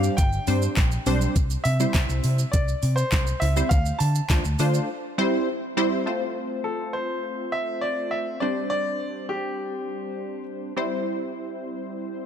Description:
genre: dance-pop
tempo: 102 BPM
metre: 4/4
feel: straight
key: unclear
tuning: A4 = 439 Hz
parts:
  - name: clear baby grand piano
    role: melody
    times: 0.0-10.4 s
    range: G4 to A5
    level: -29 LUFS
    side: equal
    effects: ping-pong delay
  - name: funky polysynth comp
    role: accompaniment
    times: 0.0-12.3 s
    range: G3 to C5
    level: -27 LUFS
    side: equal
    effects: chorus, sidechain pumping
  - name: vintage muted fingered electric bass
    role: bass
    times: 0.0-4.8 s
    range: G1 to D3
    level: -24 LUFS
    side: equal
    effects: sidechain pumping
  - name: smooth R&B drum kit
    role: drums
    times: 0.0-4.9 s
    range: handclaps, hi-hat, kick drum, shaker, snare drum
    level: -24 LUFS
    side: equal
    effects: none
room: light reverb, digital ambience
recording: none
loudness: -22 LUFS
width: side -9 dB against mid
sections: 0.0-6.1 A section; 6.1-12.3 B section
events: break 4.9-6.1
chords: 0.0 Gsus4; 1.4 C; 3.7 Dm7; 4.9 C; 6.1 F; 8.4 Gsus4; 10.8 C

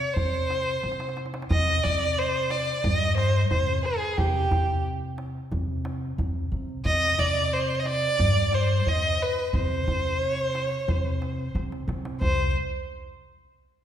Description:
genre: Arabic maqam ensemble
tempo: 90 BPM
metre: 4/4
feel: straight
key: C maqam nahawand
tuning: A4 = 443 Hz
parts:
  - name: rich violin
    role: melody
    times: 0.0-12.5 s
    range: G4 to Eb5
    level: -25 LUFS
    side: right 1 dB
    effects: none
  - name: upright bass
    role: bass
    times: 0.0-12.5 s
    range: C2 to C3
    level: -29 LUFS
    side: equal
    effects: none
  - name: darbuka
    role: percussion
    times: 0.2-12.5 s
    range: none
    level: -29 LUFS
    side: equal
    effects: none
room: wet scoring stage reverb, RT60 1.6 s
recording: recorded in a church or concert hall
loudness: -23 LUFS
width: side -10 dB against mid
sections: 0.0-1.5 A section; 1.5-12.2 B section; 12.2-13.8 C section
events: drum fill 0.8-1.5, 11.5-12.2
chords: none

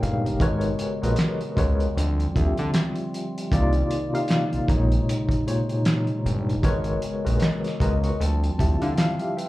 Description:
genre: R&B, neo-soul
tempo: 77 BPM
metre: 4/4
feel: swing 58% on 16ths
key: unclear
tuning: A4 = 440 Hz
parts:
  - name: tine electric piano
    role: accompaniment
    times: 0.0-9.5 s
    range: Bb2 to Db6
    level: -26 LUFS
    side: left 1 dB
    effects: medium tremolo, slapback echo
  - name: pipe organ, stopped flute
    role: sustained chords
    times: 0.0-9.5 s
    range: C3 to D5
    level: -32 LUFS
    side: right 1 dB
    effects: none
  - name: fat analog bass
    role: bass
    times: 0.0-8.9 s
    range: G1 to D3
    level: -23 LUFS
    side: equal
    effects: none
  - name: cloth-damped thuddy drum kit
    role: drums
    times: 0.0-9.5 s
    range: handclaps, hi-hat, kick drum, snare drum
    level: -26 LUFS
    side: equal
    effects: none
room: light reverb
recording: live gig heard through the venue's PA, club reverb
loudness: -21 LUFS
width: side -17 dB against mid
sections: 0.0-9.5 A section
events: tine electric piano fill 7.4-9.5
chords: 0.4 Abm11; 2.0 Dm11; 3.5 Cm11; 4.7 Bbm11; 6.6 Abm11; 8.2 Dm11

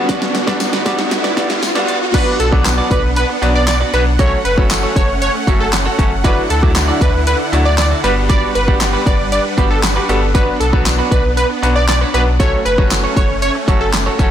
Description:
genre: dance-pop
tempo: 117 BPM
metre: 4/4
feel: straight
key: B minor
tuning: A4 = 440 Hz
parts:
  - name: bright grand piano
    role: accompaniment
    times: 0.0-14.3 s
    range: F#3 to C#5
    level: -21 LUFS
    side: left 2 dB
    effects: sidechain pumping
  - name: supersaw chords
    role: sustained chords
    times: 0.0-14.3 s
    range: G2 to F#5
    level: -22 LUFS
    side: right 1 dB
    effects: sidechain pumping
  - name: twelve-string electric guitar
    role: riff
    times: 0.0-14.3 s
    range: D4 to D5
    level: -24 LUFS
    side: right 4 dB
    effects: wide subtle chorus
  - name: riser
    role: sound effects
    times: 0.0-2.1 s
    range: none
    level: -21 LUFS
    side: equal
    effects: none
  - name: pop drum kit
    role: drums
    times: 0.1-14.3 s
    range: crash cymbal, handclaps, hi-hat, kick drum, snare drum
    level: -16 LUFS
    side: equal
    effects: none
  - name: tambourine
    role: percussion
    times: 0.6-14.1 s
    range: none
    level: -29 LUFS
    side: left 8 dB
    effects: none
  - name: plucky unison lead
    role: melody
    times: 2.1-13.9 s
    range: A4 to D5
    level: -19 LUFS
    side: right 1 dB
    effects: sidechain pumping, ping-pong delay
  - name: sub bass with octave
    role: bass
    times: 2.4-14.3 s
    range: F#1 to D2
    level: -18 LUFS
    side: equal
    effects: sidechain pumping
room: light reverb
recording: blown-out, overdriven recording, overdrive, high-pass filter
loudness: -12 LUFS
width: side -10 dB against mid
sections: 0.0-2.1 A section; 2.1-14.3 B section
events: build-up 0.0-2.1; drum fill 0.0-2.1; riser 0.0-2.1; drop 2.1-14.3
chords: 0.0 Gmaj7; 2.1 Bm; 4.2 F#m; 6.2 Dadd9; 8.0 Gmaj7; 10.3 Bm; 12.4 F#m

